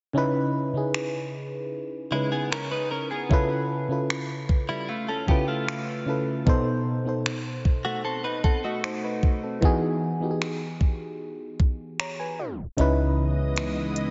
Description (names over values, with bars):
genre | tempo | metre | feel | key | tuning
contemporary R&B | 76 BPM | 4/4 | straight | unclear | A4 = 440 Hz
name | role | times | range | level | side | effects
FM electric piano | accompaniment | 0.1-14.1 s | B2 to A#5 | -30 LUFS | equal | none
trap drum kit | drums | 0.9-14.1 s | finger snaps, hi-hat, kick drum | -28 LUFS | equal | none
direct-recorded clean electric guitar | arpeggios | 2.1-9.6 s | G3 to B4 | -33 LUFS | equal | analog chorus, delay
ethereal airy pad | sustained chords | 13.1-14.1 s | C#3 to D#5 | -33 LUFS | equal | ensemble chorus, built-in reverb
vintage muted fingered electric bass | bass | 12.8-14.1 s | C#2 | -28 LUFS | equal | none
room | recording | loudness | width
moderate lush hall reverb, RT60 2.6 s | dreamy mix soaked in reverb, tape stop, nothing above 7.7 kHz | -26 LUFS | mono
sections
0.2-12.8 A section; 12.8-14.1 B section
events
tape stop 12.4-12.8; kick muted 12.8-14.1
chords
0.2 C#m9; 3.3 C#7alt; 6.5 B7b9; 9.6 Emaj9; 12.8 C#m9